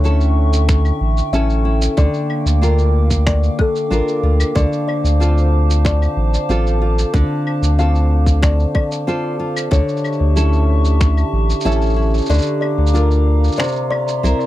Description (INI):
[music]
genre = folktronica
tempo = 93 BPM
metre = 4/4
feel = straight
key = D minor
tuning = A4 = 441 Hz
[part]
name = warbly tape-like pad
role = sustained chords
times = 0.0-14.5 s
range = Bb3 to D6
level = -25 LUFS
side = right 2 dB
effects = chorus, built-in reverb
[part]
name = nylon-string guitar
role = arpeggios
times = 0.0-14.5 s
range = C3 to Bb4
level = -20 LUFS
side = left 1 dB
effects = tape echo
[part]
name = warm sub bass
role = bass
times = 0.0-14.3 s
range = A1 to D2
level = -14 LUFS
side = equal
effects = none
[part]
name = electronic shaker, finger snaps and claves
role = drums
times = 0.0-14.5 s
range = none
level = -28 LUFS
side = equal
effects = none
[part]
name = electronic kick drum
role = drums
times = 0.7-11.1 s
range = none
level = -17 LUFS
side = equal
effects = overdrive
[part]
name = kalimba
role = second line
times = 1.3-14.2 s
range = A4 to F5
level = -25 LUFS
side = left 4 dB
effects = tape echo
[sound]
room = little or no reverb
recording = dry, close 1970s-style studio recording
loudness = -14 LUFS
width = side -15 dB against mid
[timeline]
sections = 0.0-14.5 A section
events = kick drops out 12.3-14.5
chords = 0.0 A7/D; 2.0 Gm7/D; 4.6 Dm7; 9.7 A7/D; 12.3 Gm7/D; 13.6 C7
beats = 0.04 0.69 1.33 | 1.98 2.62 3.27 3.91 | 4.56 5.20 5.85 6.49 | 7.14 7.78 8.43 9.07 | 9.72 10.36 11.01 11.65 | 12.30 12.94 13.59 14.23